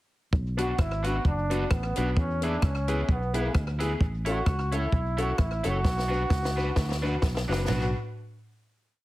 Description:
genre	ska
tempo	130 BPM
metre	4/4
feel	swing 56% on 8ths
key	B dorian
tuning	A4 = 440 Hz
part	fingered electric bass	bass	0.3-7.9 s	F#1 to E2	-29 LUFS	equal	none
part	compact cocktail drum kit	drums	0.3-7.8 s	hi-hat, kick drum, ride cymbal, rim click, snare drum, toms	-27 LUFS	equal	slapback echo
part	bright trombone	melody	0.6-7.9 s	B3 to F#4	-32 LUFS	right 1 dB	slapback echo
part	electric guitar at the edge of break-up	accompaniment	0.6-7.8 s	D4 to C#5	-36 LUFS	right 2 dB	lush chorus, slapback echo
part	dark upright piano	stabs	0.6-7.9 s	B3 to B4	-34 LUFS	left 3 dB	slapback echo
room	light reverb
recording	heavily compressed radio sound, multiband compression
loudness	-24 LUFS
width	side -17 dB against mid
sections	0.3-7.7 A section; 7.7-9.0 final chord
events	drum fill 5.8-7.7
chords	0.3 Bm; 2.2 E; 4.0 A; 5.8 Bm

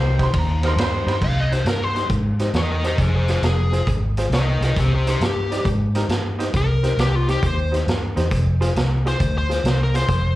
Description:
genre	electric blues shuffle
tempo	135 BPM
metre	4/4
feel	swing 67% on 8ths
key	C minor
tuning	A4 = 440 Hz
part	bright horn section	stabs	0.0-1.2 s	Eb4 to C5	-28 LUFS	left 2 dB	slapback echo
part	vintage muted fingered electric bass	bass	0.0-10.4 s	F1 to Ab2	-20 LUFS	equal	none
part	bright upright piano	accompaniment	0.2-10.0 s	C4 to C6	-28 LUFS	right 2 dB	slapback echo
part	vintage drum kit	drums	0.2-10.2 s	crash cymbal, hi-hat, kick drum, ride cymbal, snare drum	-24 LUFS	equal	none
part	smooth overdriven lead guitar	melody	1.2-10.4 s	F4 to F5	-24 LUFS	left 2 dB	slapback echo
room	little or no reverb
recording	live gig heard through the venue's PA, club reverb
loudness	-18 LUFS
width	side -16 dB against mid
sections	0.0-1.2 A section; 1.2-10.4 B section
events	none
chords	0.0 Cm; 3.0 Fm; 4.8 Cm; 8.3 Fm

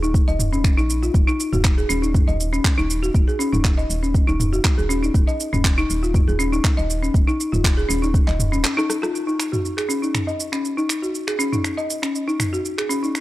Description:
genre	afro house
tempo	120 BPM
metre	4/4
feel	swing 54% on 16ths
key	Eb minor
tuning	A4 = 441 Hz
part	folk marimba with medium hard mallets	arpeggios	0.0-13.1 s	Db4 to Eb5	-22 LUFS	left 1 dB	sidechain pumping, low-pass filter, analog delay
part	woody FM bass	bass	0.0-8.6 s	Eb1 to Bb1	-24 LUFS	equal	tube saturation, sidechain pumping
part	deep house drum kit	drums	0.0-13.2 s	finger snaps, handclaps, rim click, shaker, toms	-25 LUFS	right 1 dB	overdrive
part	electronic kick drum	drums	0.1-8.2 s	none	-17 LUFS	equal	overdrive
room	digital ambience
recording	dry, gritty hardware recording, transformer saturation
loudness	-18 LUFS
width	side -16 dB against mid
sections	0.0-9.1 A section; 9.1-13.2 B section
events	drum fill 8.6-9.1; band accent 9.0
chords	0.0 N.C.; 1.1 Eb7(no3); 5.1 N.C.; 9.1 Ebm7

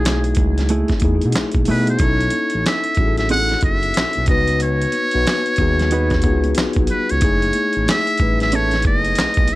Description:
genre	R&B, neo-soul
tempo	92 BPM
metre	4/4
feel	swing 61% on 16ths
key	unclear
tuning	A4 = 439 Hz
part	trumpet with metal mute	melody	0.0-9.6 s	G#4 to F#5	-20 LUFS	right 1 dB	tape echo
part	mellow tine electric piano	accompaniment	0.0-9.6 s	A3 to B4	-22 LUFS	left 4 dB	none
part	smooth gliding synth bass	bass	0.0-9.5 s	F#1 to B2	-21 LUFS	equal	none
part	congas	percussion	0.0-9.6 s	none	-32 LUFS	right 5 dB	none
part	dusty soul sampler-style drum kit	drums	0.1-9.6 s	handclaps, hi-hat, kick drum, snare drum	-20 LUFS	equal	none
part	mellow electric guitar	second line	0.7-8.8 s	A3 to B4	-24 LUFS	right 3 dB	tape echo
room	little or no reverb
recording	none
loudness	-15 LUFS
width	side -18 dB against mid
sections	0.0-2.0 A section; 2.0-9.6 B section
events	none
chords	0.0 B13sus4; 4.3 C#9sus4; 7.2 F#m7

